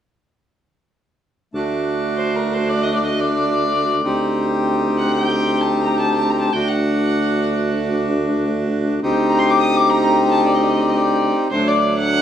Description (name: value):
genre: klezmer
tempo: free time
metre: none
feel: none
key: D phrygian dominant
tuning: A4 = 440 Hz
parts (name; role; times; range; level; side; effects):
- accordion; accompaniment; 1.5-12.2 s; F#3 to G4; -18 LUFS; equal; none
- clear tuba; bass; 1.5-12.2 s; D2; -22 LUFS; equal; none
- dark violin; melody; 2.2-12.2 s; Bb4 to Eb6; -21 LUFS; left 1 dB; plate reverb
room: wet studio reverb, RT60 0.5 s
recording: heard from further back in the room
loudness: -16 LUFS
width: side -9 dB against mid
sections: 1.5-11.5 A section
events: none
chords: 1.5 D; 4.0 Cmadd9/D; 6.5 D; 9.0 Cmadd9/D; 11.5 D